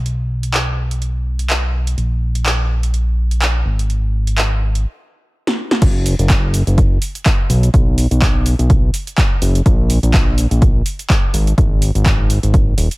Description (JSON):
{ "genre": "piano house", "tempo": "125 BPM", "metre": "4/4", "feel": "swing 56% on 16ths", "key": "unclear", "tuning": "A4 = 440 Hz", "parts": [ { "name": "fat analog bass", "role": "bass", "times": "0.0-12.9 s", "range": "D#1 to B1", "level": "-16 LUFS", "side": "equal", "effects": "sidechain pumping" }, { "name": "punchy analog drum machine", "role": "drums", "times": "0.1-13.0 s", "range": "crash cymbal, handclaps, hi-hat, shaker, snare drum", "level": "-20 LUFS", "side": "equal", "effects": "overdrive" }, { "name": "electronic kick drum", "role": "drums", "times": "5.8-12.6 s", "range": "none", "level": "-14 LUFS", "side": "equal", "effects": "none" } ], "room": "little or no reverb", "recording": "none", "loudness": "-13 LUFS", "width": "side -22 dB against mid", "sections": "0.0-5.8 A section; 5.8-13.0 B section", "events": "stop 4.9-5.8; drum fill 5.5-5.8; drop 5.8-13.0", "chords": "none" }